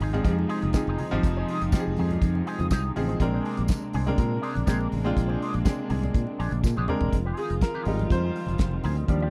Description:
disco; 122 BPM; 4/4; straight; F dorian; A4 = 440 Hz
clear grand piano; accompaniment; 0.0-9.3 s; F3 to C5; -32 LUFS; equal
electric guitar with an envelope filter; accompaniment; 0.0-9.3 s; D4 to D5; -38 LUFS; equal; wah, analog chorus
warm studio string section; sustained chords; 0.0-9.3 s; C3 to F4; -35 LUFS; equal
fingered electric bass; bass; 0.0-9.3 s; E1 to Bb2; -30 LUFS; equal
damped 70s drum kit; drums; 0.0-9.2 s; hi-hat, kick drum, snare drum, toms; -26 LUFS; equal
congas; percussion; 0.0-9.3 s; -39 LUFS; equal
tambourine; percussion; 0.7-6.8 s; -47 LUFS; equal
little or no reverb; dry, close 1970s-style studio recording; -26 LUFS; mono
0.0-7.1 A section; 7.1-9.3 B section
drum fill 6.6-7.1; grand piano solo 7.1-9.3
0.0 Fm7; 3.2 Bb9; 7.1 Fm7
0.25 0.74 | 1.23 1.72 2.21 2.71 | 3.20 3.69 4.18 4.67 | 5.16 5.65 6.14 6.63 | 7.12 7.61 8.10 8.60 | 9.09

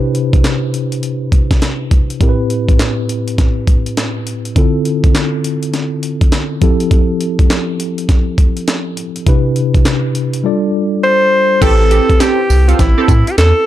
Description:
R&B, new jack swing; 102 BPM; 4/4; swing 63% on 16ths; A4 = 441 Hz
mellow tine electric piano; accompaniment; 0.0-13.7 s; A2 to D5; -17 LUFS; left 1 dB; medium stereo tremolo
breakbeat sampler-style drum kit; drums; 0.1-13.6 s; crash cymbal, handclaps, hi-hat, kick drum, snare drum, tambourine; -13 LUFS; equal
breathy alto saxophone; melody; 11.0-13.7 s; E4 to C5; -12 LUFS; equal
funky polysynth comp; stabs; 11.6-13.1 s; C4 to A4; -18 LUFS; right 6 dB; chorus, digital delay
round analog bass; bass; 11.6-13.5 s; A1 to A2; -11 LUFS; equal
digital ambience; dark, warm production; -11 LUFS; side -13 dB against mid
0.0-11.6 A section; 11.6-13.7 B section
0.0 Cmaj7; 2.2 Am7; 4.6 Dm7; 6.6 Fmaj7; 9.3 Cmaj7; 10.4 G5; 11.6 Am7
0.44 1.03 1.62 | 2.21 2.79 3.38 3.97 | 4.56 5.15 5.74 6.32 | 6.91 7.50 8.09 8.68 | 9.27 9.85 10.44 11.03 | 11.62 12.21 12.79 13.38

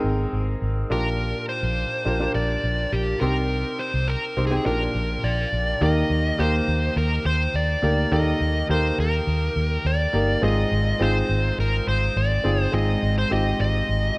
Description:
1980s-style pop; 104 BPM; 4/4; straight; Eb major; A4 = 438 Hz
clear concert grand piano; accompaniment; 0.0-14.2 s; Ab2 to C5; -28 LUFS; equal
vintage muted fingered electric bass; bass; 0.0-14.1 s; G1 to Eb2; -26 LUFS; equal
dark smooth lead guitar; melody; 0.9-14.1 s; G4 to Eb5; -28 LUFS; equal; overdrive
moderate lush hall reverb, RT60 3.0 s; dark, warm production; -23 LUFS; mono
0.0-5.8 A section; 5.8-14.2 B section
0.0 Abadd9; 0.9 Gm7/Bb; 3.2 Cm; 4.7 Bb6; 5.8 Eb; 10.4 Ab6
0.04 0.62 | 1.19 1.77 2.35 2.92 | 3.50 4.08 4.66 5.23 | 5.81 6.38 6.96 7.54 | 8.12 8.69 9.27 9.85 | 10.42 11.00 11.58 12.15 | 12.73 13.31 13.88

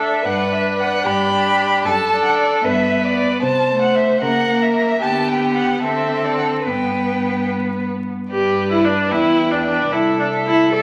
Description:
quick classical-period movement for string quartet; 75 BPM (dotted quarters); 6/8; straight; G major; A4 = 440 Hz
warm violin; melody; 0.0-10.8 s; D5 to B5; -25 LUFS; equal
warm violin; second line; 0.0-10.8 s; G4 to D5; -22 LUFS; equal
clear viola; accompaniment; 0.0-10.8 s; A3 to A4; -22 LUFS; equal
rich cello; bass; 0.0-10.8 s; C2 to D3; -29 LUFS; equal
wet recital hall reverb, RT60 1.6 s; vinyl crackle; -18 LUFS; mono
0.0-8.3 A section; 8.3-10.8 A section
0.3 G; 1.9 D/F#; 2.6 G; 3.4 Am/C; 4.2 F#7/C#; 5.0 G/D; 5.8 D5; 6.7 G; 9.1 Em; 9.9 Am/C
| 0.25 1.06 | 1.85 2.64 | 3.43 4.22 | 5.02 5.83 | 6.66 7.49 | 8.31 9.11 | 9.91 10.72

